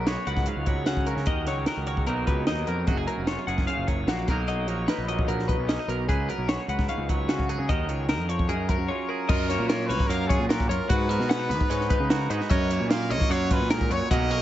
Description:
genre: math rock and midwest emo.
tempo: 150 BPM.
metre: 4/4.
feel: straight.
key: F# major.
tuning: A4 = 440 Hz.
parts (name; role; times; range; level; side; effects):
twangy electric guitar; accompaniment; 0.0-14.4 s; F#2 to B4; -31 LUFS; right 7 dB; tape echo.
twelve-string electric guitar; arpeggios; 0.0-14.4 s; F#4 to F#5; -31 LUFS; left 6 dB; tape echo.
fuzz picked electric bass; bass; 0.0-14.4 s; E#1 to C#3; -29 LUFS; equal; overdrive.
compact cocktail drum kit; drums; 0.1-14.4 s; crash cymbal, hi-hat, kick drum, snare drum; -27 LUFS; equal; none.
brilliant trumpet; melody; 9.3-14.4 s; F#4 to E#5; -30 LUFS; left 1 dB; tape echo.
room: light reverb, small room ambience.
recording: echo-heavy mix, nothing above 7.9 kHz.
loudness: -23 LUFS.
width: side -13 dB against mid.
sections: 0.0-9.3 A section; 9.3-14.4 B section.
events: break 8.9-9.3.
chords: 0.0 C#7sus4; 1.3 D#m7; 2.1 Bmaj7; 2.9 F#maj9; 4.3 Bmaj7; 6.1 C#7sus4; 7.7 D#m7; 8.5 F#maj7; 10.9 G#m9; 12.5 F#maj7.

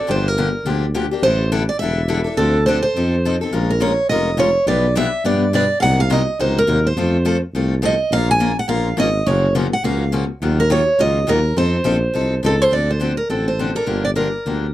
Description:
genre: acoustic string swing (jazz manouche).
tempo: 209 BPM.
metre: 4/4.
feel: swing 59% on 8ths.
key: Bb minor from 3.5 s.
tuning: A4 = 440 Hz.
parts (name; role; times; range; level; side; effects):
picked steel-string acoustic guitar; melody; 0.0-14.7 s; A4 to Ab5; -18 LUFS; right 2 dB; none.
picked steel-string acoustic guitar; accompaniment; 0.0-14.7 s; B2 to B4; -22 LUFS; left 4 dB; none.
mellow tuba; bass; 0.1-14.7 s; E1 to G2; -20 LUFS; equal; none.
room: little or no reverb.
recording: dry, close 1970s-style studio recording.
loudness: -15 LUFS.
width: side -14 dB against mid.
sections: 0.0-3.5 A section; 3.5-12.7 B section; 12.7-14.7 A section.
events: none.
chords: 0.1 Gm7; 1.2 A7sus4; 2.4 Dm7; 2.9 F7; 3.5 Bbm7; 4.7 G7/B; 5.8 Cm7b5; 7.0 F; 8.1 Bbm; 9.3 Gbmaj7; 10.4 Ebmadd9; 11.6 F7; 12.7 Dm7; 13.9 Gm7.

